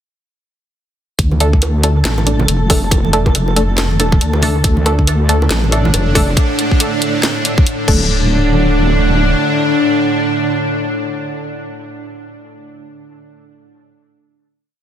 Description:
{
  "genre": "deep dubstep",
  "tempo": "139 BPM",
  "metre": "4/4",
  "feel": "swing 60% on 16ths, half-time",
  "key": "D minor",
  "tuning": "A4 = 440 Hz",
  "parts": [
    { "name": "wobble bass", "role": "bass", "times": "1.2-9.4 s", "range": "D1 to D2", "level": "-14 LUFS", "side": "equal", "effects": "chorus" },
    { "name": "electronic kick drum", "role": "drums", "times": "1.2-8.0 s", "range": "none", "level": "-13 LUFS", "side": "equal", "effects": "none" },
    { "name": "garage drum kit", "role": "drums", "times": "1.2-8.0 s", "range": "crash cymbal, handclaps, hi-hat, snare drum", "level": "-18 LUFS", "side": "left 1 dB", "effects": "none" },
    { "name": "flickering grainy texture", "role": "texture", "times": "1.7-6.4 s", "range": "A3 to A4", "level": "-25 LUFS", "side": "left 2 dB", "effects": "built-in reverb" },
    { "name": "bongos and congas", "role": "percussion", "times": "1.3-6.3 s", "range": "none", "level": "-23 LUFS", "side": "right 3 dB", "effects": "dub echo" },
    { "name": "filtered dub chord stab", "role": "stabs", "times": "1.4-11.9 s", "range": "A3 to A4", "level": "-21 LUFS", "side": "equal", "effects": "chorus, dub echo" },
    { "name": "bowed-like drone", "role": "sustained chords", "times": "5.5-11.9 s", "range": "A2 to D4", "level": "-16 LUFS", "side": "equal", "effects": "built-in reverb" }
  ],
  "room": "light reverb",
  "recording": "dense, heavily limited modern master",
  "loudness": "-12 LUFS",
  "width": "side -10 dB against mid",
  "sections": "1.2-8.1 drop; 8.1-11.5 final hit",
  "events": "drop 1.2-8.1",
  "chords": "1.2 D5"
}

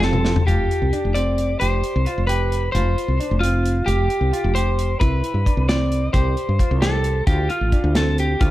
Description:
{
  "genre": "progressive instrumental, band music in an uneven meter",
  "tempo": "265 BPM (eighths)",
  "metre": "5/8",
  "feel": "straight",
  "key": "F lydian",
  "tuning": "A4 = 440 Hz",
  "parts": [
    { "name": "lightly driven lead guitar", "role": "melody", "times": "0.0-8.5 s", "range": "F4 to D5", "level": "-23 LUFS", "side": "left 1 dB", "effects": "plate reverb, tape echo" },
    { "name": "bright grand piano", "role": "arpeggios", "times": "0.0-8.5 s", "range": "C4 to G4", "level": "-27 LUFS", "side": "right 3 dB", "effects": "none" },
    { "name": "woody fretless electric bass", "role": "bass", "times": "0.0-8.5 s", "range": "F1 to G2", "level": "-20 LUFS", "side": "equal", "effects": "none" },
    { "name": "modern studio drum kit", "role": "drums", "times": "0.0-8.5 s", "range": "hi-hat, kick drum, snare drum, toms", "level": "-22 LUFS", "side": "equal", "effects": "none" }
  ],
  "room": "light reverb",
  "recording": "dark, warm production",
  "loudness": "-17 LUFS",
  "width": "side -15 dB against mid",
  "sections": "0.5-8.5 A section",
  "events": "drum fill 0.0-0.5",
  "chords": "0.5 Fsus2; 5.0 Cmaj7; 7.3 Dm"
}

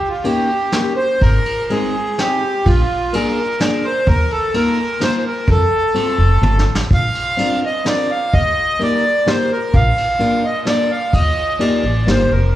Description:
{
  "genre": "musette waltz",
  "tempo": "127 BPM",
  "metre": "3/4",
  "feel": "rubato",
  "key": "Bb major",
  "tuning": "A4 = 443 Hz",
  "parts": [
    { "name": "accordion", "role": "melody", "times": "0.0-12.6 s", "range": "F4 to F5", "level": "-18 LUFS", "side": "right 1 dB", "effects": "none" },
    { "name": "fingerpicked steel-string acoustic guitar", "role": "accompaniment", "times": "0.2-12.3 s", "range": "Ab3 to Bb4", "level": "-21 LUFS", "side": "left 2 dB", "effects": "none" },
    { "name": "vintage brush drum kit", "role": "drums", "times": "0.2-12.2 s", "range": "kick drum, ride cymbal, snare drum, toms", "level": "-21 LUFS", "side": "equal", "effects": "none" },
    { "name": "upright bass", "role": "bass", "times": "1.2-12.5 s", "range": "F1 to F2", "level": "-18 LUFS", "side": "equal", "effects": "none" }
  ],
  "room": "moderate recital hall reverb, RT60 1.4 s",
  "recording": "heard from further back in the room",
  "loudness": "-14 LUFS",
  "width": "side -13 dB against mid",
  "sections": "0.0-12.6 A section",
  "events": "drum fill 6.4-6.9",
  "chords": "0.0 Eb7; 1.2 Ab; 2.7 Bb7; 4.1 Ebsus2; 5.5 F; 6.9 Bbadd9; 8.3 Eb; 9.7 Bb; 11.1 Ebadd9"
}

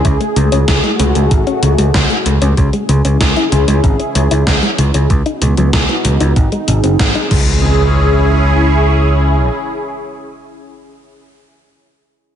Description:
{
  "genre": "synthwave",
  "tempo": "95 BPM",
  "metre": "4/4",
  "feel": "straight",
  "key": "C# minor",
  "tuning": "A4 = 440 Hz",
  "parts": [
    { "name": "lush unison pad", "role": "sustained chords", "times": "0.0-10.9 s", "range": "A3 to G#4", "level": "-17 LUFS", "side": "equal", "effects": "chorus, phaser, sidechain pumping" },
    { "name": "soft round pluck", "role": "arpeggios", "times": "0.0-7.9 s", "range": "B2 to E4", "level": "-19 LUFS", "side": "left 2 dB", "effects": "chorus, cassette tape, digital delay" },
    { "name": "picked electric bass", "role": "bass", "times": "0.0-9.5 s", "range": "F#1 to C#2", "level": "-13 LUFS", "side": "equal", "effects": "sidechain pumping, low-pass filter" },
    { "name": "electronic kick drum", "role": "drums", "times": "0.0-7.4 s", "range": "none", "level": "-15 LUFS", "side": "equal", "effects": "overdrive" },
    { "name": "gated 80s digital drum machine", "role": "drums", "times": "0.0-7.4 s", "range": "crash cymbal, hi-hat, snare drum", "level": "-18 LUFS", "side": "equal", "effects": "gated reverb, gated reverb snare, overdrive" },
    { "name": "impact", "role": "sound effects", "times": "7.3-11.7 s", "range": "none", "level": "-21 LUFS", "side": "right 1 dB", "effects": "none" }
  ],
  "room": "light reverb",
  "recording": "nothing above 10.9 kHz",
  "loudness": "-10 LUFS",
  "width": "side -9 dB against mid",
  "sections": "0.0-7.6 A section; 7.6-10.2 B section",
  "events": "filter sweep on analog synth pad 0.0-7.6; filter sweep on synth arpeggio sound 0.0-7.6",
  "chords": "0.0 F#madd9/C#; 2.6 C#m; 5.1 B/C#; 6.4 G#; 7.3 C#m"
}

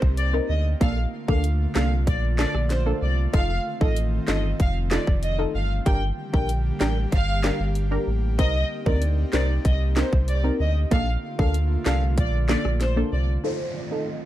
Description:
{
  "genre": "dancehall",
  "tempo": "95 BPM",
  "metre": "4/4",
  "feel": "straight",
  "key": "unclear",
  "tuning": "A4 = 440 Hz",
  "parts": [
    { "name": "punchy chord stab", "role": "accompaniment", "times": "0.0-14.1 s", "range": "Bb3 to Bb4", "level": "-28 LUFS", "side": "equal", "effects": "chorus, low-pass filter" },
    { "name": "airy breathy pad", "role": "sustained chords", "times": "0.0-14.3 s", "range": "D3 to G4", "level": "-33 LUFS", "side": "equal", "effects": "chorus, sidechain pumping, low-pass filter" },
    { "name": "sub bass with octave", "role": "bass", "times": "0.0-13.4 s", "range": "F1 to D2", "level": "-23 LUFS", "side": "equal", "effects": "none" },
    { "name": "island pop drum kit", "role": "drums", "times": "0.0-13.0 s", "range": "handclaps, hi-hat, kick drum, rim click, snare drum", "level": "-23 LUFS", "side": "equal", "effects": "none" },
    { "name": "warm studio violin section", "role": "melody", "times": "0.2-14.0 s", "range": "C5 to G5", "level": "-30 LUFS", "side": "equal", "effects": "low-pass filter, digital delay" },
    { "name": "downlifter", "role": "sound effects", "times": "13.4-14.3 s", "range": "none", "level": "-36 LUFS", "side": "right 2 dB", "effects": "none" }
  ],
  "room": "digital ambience",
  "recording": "dark, warm production",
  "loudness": "-21 LUFS",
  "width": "side -14 dB against mid",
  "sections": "0.0-13.4 A section",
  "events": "none",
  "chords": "0.0 Cm7; 0.8 Bbmaj7; 3.3 F7; 5.9 Gm; 8.4 Cm7; 10.9 Bbmaj7; 13.4 F7"
}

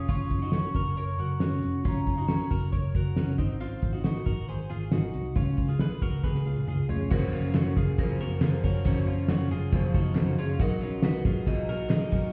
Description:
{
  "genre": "jangly indie pop",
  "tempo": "137 BPM",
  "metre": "4/4",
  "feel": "straight",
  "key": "F# major",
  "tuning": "A4 = 440 Hz",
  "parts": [
    { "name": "vibraphone with medium hard mallets", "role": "melody", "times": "0.0-2.5, 6.9-12.3 s", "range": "G#4 to C#6", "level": "-39 LUFS", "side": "equal", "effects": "analog delay" },
    { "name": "twelve-string electric guitar", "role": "arpeggios", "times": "0.0-12.3 s", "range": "B#3 to C#5", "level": "-37 LUFS", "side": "equal", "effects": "analog delay" },
    { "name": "vintage muted picked electric bass", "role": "bass", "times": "0.0-12.3 s", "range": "E#1 to C#2", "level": "-31 LUFS", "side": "equal", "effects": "none" },
    { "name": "cloth-damped thuddy drum kit", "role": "drums", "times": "0.1-12.2 s", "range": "crash cymbal, hi-hat, kick drum, ride cymbal, snare drum, toms", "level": "-30 LUFS", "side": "equal", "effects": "none" },
    { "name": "picked twelve-string acoustic guitar", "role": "accompaniment", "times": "7.1-12.3 s", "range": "F#2 to D#4", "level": "-35 LUFS", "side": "equal", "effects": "none" },
    { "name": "group handclap", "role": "percussion", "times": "7.5-12.0 s", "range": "none", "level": "-52 LUFS", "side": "equal", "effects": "none" }
  ],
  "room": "light reverb, small room reverb",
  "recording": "heard muffled through a wall, stone room reverb, vinyl crackle, EQ",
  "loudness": "-27 LUFS",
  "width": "mono",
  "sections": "0.0-7.1 A section; 7.1-12.3 B section",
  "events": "drum fill 6.2-7.1",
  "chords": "0.1 F#maj7; 3.4 G#7; 5.4 C#7; 7.1 F#maj7; 10.6 Bmaj7"
}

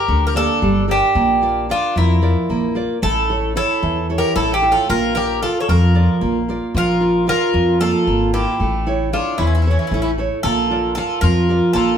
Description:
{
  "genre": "greek folk, Greek bouzouki band",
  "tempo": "226 BPM (eighths)",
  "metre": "7/8",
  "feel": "straight",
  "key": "unclear",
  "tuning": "A4 = 440 Hz",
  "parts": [
    { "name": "Greek bouzouki", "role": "melody", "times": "0.0-12.0 s", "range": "E4 to C#5", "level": "-20 LUFS", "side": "right 1 dB", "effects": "none" },
    { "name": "Greek bouzouki", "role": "second line", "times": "0.0-12.0 s", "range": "Bb3 to A4", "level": "-22 LUFS", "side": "left 1 dB", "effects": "none" },
    { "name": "nylon-string guitar", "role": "accompaniment", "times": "0.0-12.0 s", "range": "D3 to D5", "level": "-20 LUFS", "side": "right 3 dB", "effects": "none" },
    { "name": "upright bass", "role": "bass", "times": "0.1-12.0 s", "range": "G1 to F2", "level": "-20 LUFS", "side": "left 1 dB", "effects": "none" }
  ],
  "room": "wet studio reverb, RT60 0.7 s",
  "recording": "band playing live in one room",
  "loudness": "-15 LUFS",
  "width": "side -8 dB against mid",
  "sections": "0.0-12.0 A section",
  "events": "speeding up 0.0-12.0",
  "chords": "0.0 Gm; 1.2 Bb; 3.0 A; 4.9 Bb; 8.6 A; 10.4 Bb"
}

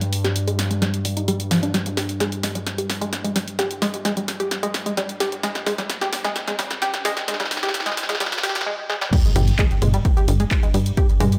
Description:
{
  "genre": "driving peak-time techno",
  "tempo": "130 BPM",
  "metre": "4/4",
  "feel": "straight",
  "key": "unclear",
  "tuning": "A4 = 440 Hz",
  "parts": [
    { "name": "tight sequenced synth", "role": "riff", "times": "0.0-11.2 s", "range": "F3 to G4", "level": "-27 LUFS", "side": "equal", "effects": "chorus, tube saturation, vintage 12-bit sampler grit, sidechain pumping, dub echo" },
    { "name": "analog drone", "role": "drone", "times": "0.0-11.4 s", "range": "G2", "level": "-32 LUFS", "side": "equal", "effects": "chorus, sidechain pumping" },
    { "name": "punchy analog drum machine", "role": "drums", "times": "0.0-11.4 s", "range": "crash cymbal, handclaps, hi-hat, ride cymbal, snare drum, toms", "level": "-28 LUFS", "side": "equal", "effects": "high-pass filter on snare, sidechain pumping on hats, high-pass filter on hats, sidechain pumping on toms, high-pass filter on toms, sidechain pumping on cymbals, high-pass filter on cymbals, high-pass filter on room" },
    { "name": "riser, swell and impact", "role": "sound effects", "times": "3.8-11.0 s", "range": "none", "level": "-34 LUFS", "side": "equal", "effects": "none" },
    { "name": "electronic kick drum", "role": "drums", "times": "9.1-11.1 s", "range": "none", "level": "-21 LUFS", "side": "equal", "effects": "none" },
    { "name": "tight sequencer bass", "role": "bass", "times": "9.4-11.4 s", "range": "G1 to G2", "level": "-20 LUFS", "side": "equal", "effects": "sidechain pumping" }
  ],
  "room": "moderate stone room reverb, RT60 1.0 s",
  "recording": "high-pass filter",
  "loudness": "-22 LUFS",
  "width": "mono",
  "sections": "0.0-9.1 A section; 9.1-11.4 B section",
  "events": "build-up 0.0-9.1; drum fill 0.0-8.7, 8.9; filter sweep on synth arpeggio sound 0.0-9.1; filter sweep 0.0-9.1; swell 8.2-9.1; drop 9.1-11.4; impact 9.1-11.0",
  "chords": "0.0 G5; 9.1 N.C."
}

